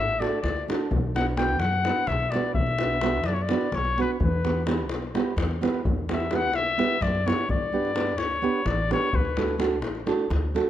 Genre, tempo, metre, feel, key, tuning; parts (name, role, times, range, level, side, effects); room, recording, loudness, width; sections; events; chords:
balkan folk, Balkan wedding band; 256 BPM (eighths); 7/8; straight; A4 = 442 Hz
warm trumpet; second line; 0.0-9.6 s; B4 to G5; -27 LUFS; left 4 dB
upright bass; bass; 0.0-10.6 s; A1 to G2; -29 LUFS; equal
davul; percussion; 0.1-10.7 s; -29 LUFS; left 2 dB
nylon-string guitar; accompaniment; 0.2-10.7 s; A3 to B4; -28 LUFS; right 5 dB
moderate recital hall reverb, RT60 1.6 s; close, detailed microphones; -23 LUFS; side -12 dB against mid
0.0-10.7 A section
trumpet solo 0.0-10.7
0.0 D; 0.9 Bm; 4.2 Em; 7.5 G; 9.1 D